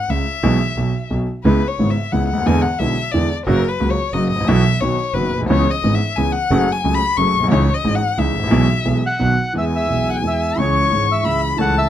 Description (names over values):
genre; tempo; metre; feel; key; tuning
tango; 178 BPM; 3/4; rubato; E major; A4 = 440 Hz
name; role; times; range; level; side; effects
rich violin; second line; 0.0-11.9 s; A#4 to C#6; -21 LUFS; left 6 dB; none
warm concert grand piano; accompaniment; 0.1-11.9 s; F#1 to A4; -18 LUFS; right 1 dB; none
clear double bass; bass; 0.1-11.9 s; F#1 to E2; -21 LUFS; right 2 dB; none
bandoneon; melody; 9.1-11.9 s; C#5 to F#5; -21 LUFS; right 1 dB; none
room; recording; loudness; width
light reverb; close, detailed microphones; -15 LUFS; side -11 dB against mid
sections
0.0-1.5 A section; 1.5-9.6 A section; 9.6-11.9 B section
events
violin solo 0.0-1.5, 1.5-9.6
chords
0.4 E/B; 1.1 N.C.; 1.5 C#m7; 2.5 E7; 3.5 F#; 4.5 Bsus4; 4.8 B; 5.5 C#m7; 6.5 F#madd9; 7.5 C#madd9; 8.5 E/B; 9.2 B; 9.6 E; 10.6 C#m